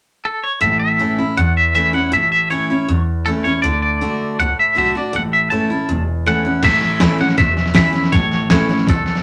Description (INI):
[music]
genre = rockabilly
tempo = 160 BPM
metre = 4/4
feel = straight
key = A major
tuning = A4 = 440 Hz
[part]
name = twangy electric guitar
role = melody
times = 0.3-9.2 s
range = A4 to A5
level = -20 LUFS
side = equal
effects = tremolo
[part]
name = picked steel-string acoustic guitar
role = accompaniment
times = 0.6-9.2 s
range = E2 to F#4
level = -22 LUFS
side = equal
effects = none
[part]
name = upright bass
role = bass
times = 0.6-9.1 s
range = E1 to E2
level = -24 LUFS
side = equal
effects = none
[part]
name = lo-fi sampler-style drum kit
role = drums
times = 6.6-9.2 s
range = crash cymbal, hi-hat, kick drum, snare drum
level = -19 LUFS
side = equal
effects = none
[sound]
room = moderate studio reverb, RT60 0.5 s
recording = none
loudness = -16 LUFS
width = mono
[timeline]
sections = 0.6-6.6 A section; 6.6-9.2 B section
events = none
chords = 0.0 N.C.; 0.6 A; 3.6 D; 5.1 A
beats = 0.25 | 0.63 1.00 1.38 1.75 | 2.13 2.51 2.88 3.26 | 3.63 4.01 4.39 4.76 | 5.14 5.51 5.89 6.26 | 6.64 7.01 7.39 7.76 | 8.13 8.51 8.88